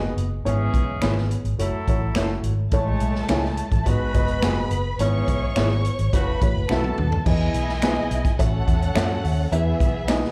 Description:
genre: uptempo 1960s-style soul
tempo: 106 BPM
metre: 4/4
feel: straight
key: E major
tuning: A4 = 440 Hz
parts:
  - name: warm horn section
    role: second line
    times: 0.0-7.0 s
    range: C#3 to C#5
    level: -34 LUFS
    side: equal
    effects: slapback echo
  - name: dark upright piano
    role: accompaniment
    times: 0.0-10.3 s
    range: G#2 to E5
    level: -30 LUFS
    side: equal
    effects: slapback echo
  - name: vintage muted fingered electric bass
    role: bass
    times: 0.0-10.2 s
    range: F#1 to F#2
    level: -26 LUFS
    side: equal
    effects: none
  - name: swinging big-band drum kit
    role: drums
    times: 0.2-10.3 s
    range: crash cymbal, hi-hat, kick drum, snare drum, toms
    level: -27 LUFS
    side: equal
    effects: none
  - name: electric guitar through a small old amp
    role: stabs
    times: 1.0-10.2 s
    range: B3 to A4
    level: -31 LUFS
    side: equal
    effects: phaser, slapback echo
  - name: finger snap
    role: percussion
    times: 1.0-10.2 s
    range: none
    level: -35 LUFS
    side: equal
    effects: none
  - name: warm studio violin section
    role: second line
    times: 2.7-10.3 s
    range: A3 to C#6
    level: -31 LUFS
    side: equal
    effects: slapback echo
room: small room reverb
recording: live gig heard through the venue's PA, club reverb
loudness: -22 LUFS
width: mono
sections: 0.0-7.3 A section; 7.3-10.3 B section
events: drum fill 6.7-7.3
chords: 0.5 C#m7/G#; 1.6 F#m7; 2.7 Amaj7; 3.9 G#m7; 5.0 C#m7/G#; 6.1 F#m7; 6.7 B7sus4; 7.3 Emaj7; 8.4 A6; 9.5 Emaj7

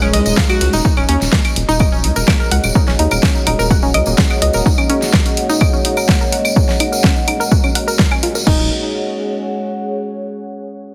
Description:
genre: melodic techno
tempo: 126 BPM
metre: 4/4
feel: straight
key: Eb minor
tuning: A4 = 440 Hz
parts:
  - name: expressive portamento lead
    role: melody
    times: 0.0-0.8 s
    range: Ab3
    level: -24 LUFS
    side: equal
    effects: subtle chorus, sidechain pumping, delay
  - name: dark analog pad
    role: sustained chords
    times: 0.0-8.7 s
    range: Bb3 to Eb5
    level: -28 LUFS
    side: equal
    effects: lush chorus, sidechain pumping
  - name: analog pluck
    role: arpeggios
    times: 0.0-8.7 s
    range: Bb3 to Gb5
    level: -23 LUFS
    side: equal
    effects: chorus, sidechain pumping, digital delay
  - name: round analog bass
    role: bass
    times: 0.0-4.6, 8.5-8.7 s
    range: D#1 to Eb2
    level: -20 LUFS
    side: equal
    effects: sidechain pumping
  - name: deep house drum kit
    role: drums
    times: 0.0-8.6 s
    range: claves, crash cymbal, hi-hat, ride cymbal, snare drum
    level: -21 LUFS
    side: equal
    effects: overdrive, sidechain pumping on cymbals, studio reverb, sidechain pumping on perc, sidechain pumping on hats
  - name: tambourine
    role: percussion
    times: 0.0-8.4 s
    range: none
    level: -27 LUFS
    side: equal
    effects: none
  - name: deep dark ambient pad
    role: texture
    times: 0.2-10.3 s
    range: Ab4 to Bb5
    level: -26 LUFS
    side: equal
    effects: chorus, built-in reverb, sidechain pumping
  - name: electronic kick drum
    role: drums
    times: 0.4-8.6 s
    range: none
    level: -17 LUFS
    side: equal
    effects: overdrive, studio reverb
room: light reverb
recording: heavily compressed radio sound, multiband compression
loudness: -15 LUFS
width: mono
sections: 0.8-8.5 A section; 8.5-10.4 B section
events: filter sweep on synth arpeggio sound 0.8-8.5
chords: 0.0 Badd9/D# (rootless); 0.8 Ebm

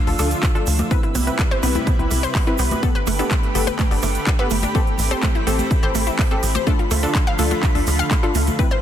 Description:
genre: progressive house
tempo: 125 BPM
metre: 4/4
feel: straight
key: unclear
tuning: A4 = 440 Hz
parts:
  - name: lush unison pad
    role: sustained chords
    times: 0.0-8.8 s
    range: C3 to B4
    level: -27 LUFS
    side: right 1 dB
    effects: chorus, sidechain pumping
  - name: wide unison pluck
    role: stabs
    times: 0.0-8.7 s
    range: B3 to B4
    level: -26 LUFS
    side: moving between left 7 dB and equal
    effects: auto-pan, sidechain pumping, dub echo
  - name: twinkling granular texture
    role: texture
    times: 0.0-8.8 s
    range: B5 to E6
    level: -32 LUFS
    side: left 2 dB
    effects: built-in reverb, sidechain pumping
  - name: tight sequencer bass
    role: bass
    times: 0.1-8.5 s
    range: G1 to D2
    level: -22 LUFS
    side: equal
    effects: sidechain pumping
  - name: big-room dance drum kit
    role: drums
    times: 0.1-8.8 s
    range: handclaps, hi-hat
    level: -27 LUFS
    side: right 1 dB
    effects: small room ambience, soft clipping on snare
  - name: tube shaker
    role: percussion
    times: 0.2-8.7 s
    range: none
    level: -35 LUFS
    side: right 6 dB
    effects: none
  - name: woodblock, cowbell and congas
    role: percussion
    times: 0.2-8.6 s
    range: none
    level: -31 LUFS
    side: left 4 dB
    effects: sidechain pumping on perc
  - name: electronic kick drum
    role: drums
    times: 0.4-8.7 s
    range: none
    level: -19 LUFS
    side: equal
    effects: small room ambience
  - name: analog pluck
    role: arpeggios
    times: 0.9-8.8 s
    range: A3 to F5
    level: -26 LUFS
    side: right 1 dB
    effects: chorus, sidechain pumping, dub echo
room: light reverb, digital ambience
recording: dense, heavily limited modern master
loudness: -17 LUFS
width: side -10 dB against mid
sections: 0.0-8.8 A section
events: none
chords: 0.0 Dm; 0.9 Cmaj7; 2.8 Gadd9; 4.8 Am7; 6.7 Dm

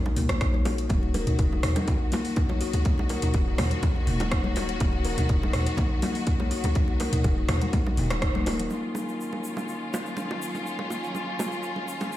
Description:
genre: afro house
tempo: 123 BPM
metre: 4/4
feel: straight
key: Eb minor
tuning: A4 = 440 Hz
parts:
  - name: kalimba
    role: arpeggios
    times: 0.0-8.6 s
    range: Bb3 to Db5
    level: -32 LUFS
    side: left 2 dB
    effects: sidechain pumping, digital delay
  - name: bongos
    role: percussion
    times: 0.1-12.1 s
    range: none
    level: -35 LUFS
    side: right 2 dB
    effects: none
  - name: warm 808-style bass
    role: bass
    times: 0.2-8.7 s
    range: Eb1 to Eb2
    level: -28 LUFS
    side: equal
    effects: sidechain pumping
  - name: afro-pop drum kit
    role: drums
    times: 0.2-8.7 s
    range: hi-hat, rim click, toms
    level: -32 LUFS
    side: equal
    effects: none
  - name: congas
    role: percussion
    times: 0.2-8.4 s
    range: none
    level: -34 LUFS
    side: left 2 dB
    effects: none
  - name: electronic kick drum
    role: drums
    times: 0.4-8.3 s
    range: none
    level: -25 LUFS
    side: equal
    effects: none
  - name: clear studio string section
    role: sustained chords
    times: 0.9-12.2 s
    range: Eb3 to Gb4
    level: -33 LUFS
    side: left 1 dB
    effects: sidechain pumping, low-pass filter
  - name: egg shaker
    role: percussion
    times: 8.7-12.2 s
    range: none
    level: -44 LUFS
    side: left 3 dB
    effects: none
room: light reverb, small room ambience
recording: played on a big sound system in a bare room, stone room reverb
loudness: -24 LUFS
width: side -14 dB against mid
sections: 0.0-8.7 A section; 8.7-12.2 B section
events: band accent 8.2; drum fill 8.5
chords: 0.0 Ebm7; 8.7 Ebm9

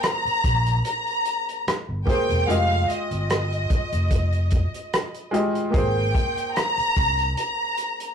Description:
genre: lush 1970s-style soul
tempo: 74 BPM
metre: 4/4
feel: swing 54% on 16ths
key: unclear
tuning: A4 = 443 Hz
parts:
  - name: warm studio violin section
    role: melody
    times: 0.0-8.1 s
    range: Eb5 to Bb5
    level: -25 LUFS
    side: left 1 dB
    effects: none
  - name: clear baby grand piano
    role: accompaniment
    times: 0.0-8.1 s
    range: Ab3 to Eb5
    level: -27 LUFS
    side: equal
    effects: none
  - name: warm soul drum kit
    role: drums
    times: 0.0-8.1 s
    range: hi-hat, kick drum, rim click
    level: -25 LUFS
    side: equal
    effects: none
  - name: fingered electric bass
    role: bass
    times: 0.3-7.3 s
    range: E1 to C2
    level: -24 LUFS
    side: equal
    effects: none
room: moderate studio reverb, RT60 0.6 s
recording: rough rehearsal-room recording, warm saturation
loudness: -20 LUFS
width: side -7 dB against mid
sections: 0.0-8.1 A section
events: none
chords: 0.0 Abmaj9; 2.5 Fm9; 5.7 Abmaj9

